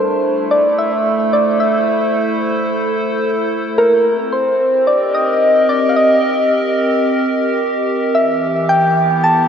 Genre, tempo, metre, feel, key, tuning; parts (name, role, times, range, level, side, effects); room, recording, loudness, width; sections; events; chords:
IDM; 110 BPM; 4/4; straight; A4 = 441 Hz
soft struck synth lead; melody; 0.0-9.5 s; Bb4 to A5; -14 LUFS; equal; chorus, tape echo
warbly tape-like pad; sustained chords; 0.0-9.5 s; E3 to A5; -16 LUFS; equal; chorus, built-in reverb
wet lush hall reverb, RT60 2.9 s; dreamy mix soaked in reverb; -13 LUFS; side -7 dB against mid
0.0-9.5 A section
0.0 Am; 4.1 Cm7; 8.1 Em